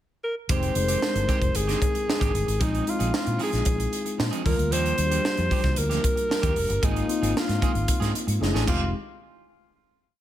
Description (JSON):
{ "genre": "polished 1980s jazz-funk pop", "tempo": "114 BPM", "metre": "4/4", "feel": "straight", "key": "F dorian", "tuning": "A4 = 440 Hz", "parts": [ { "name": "breathy alto saxophone", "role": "melody", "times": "0.2-8.9 s", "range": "Eb4 to C5", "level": "-28 LUFS", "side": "equal", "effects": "none" }, { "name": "mellow tine electric piano", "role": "accompaniment", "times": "0.5-9.0 s", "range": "G3 to Bb4", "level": "-30 LUFS", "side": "left 3 dB", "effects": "wide subtle chorus" }, { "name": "electric guitar at the edge of break-up", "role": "riff", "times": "0.5-8.8 s", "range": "Eb3 to Bb4", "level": "-34 LUFS", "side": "right 8 dB", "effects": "lush chorus" }, { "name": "vintage muted fingered electric bass", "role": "bass", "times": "0.5-8.9 s", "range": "F1 to Bb2", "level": "-27 LUFS", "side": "equal", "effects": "none" }, { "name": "crisp fusion drum kit", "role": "drums", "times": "0.5-8.8 s", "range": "crash cymbal, hi-hat, kick drum, snare drum", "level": "-26 LUFS", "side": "equal", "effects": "gated reverb" } ], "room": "studio ambience", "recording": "none", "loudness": "-22 LUFS", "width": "side -12 dB against mid", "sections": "0.0-0.5 pickup bar; 0.5-8.9 verse; 8.9-10.2 final hit", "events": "drum fill 8.4-8.9", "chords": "0.5 Fm9; 2.6 Bb9sus4; 4.5 Ebmaj9; 6.8 Ab6; 8.4 Gbm9; 8.7 Fm9; 8.9 N.C.", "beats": "| 0.49 1.02 1.55 2.08 | 2.61 3.14 3.67 4.19 | 4.72 5.25 5.78 6.30 | 6.83 7.36 7.88 8.41 | 8.94" }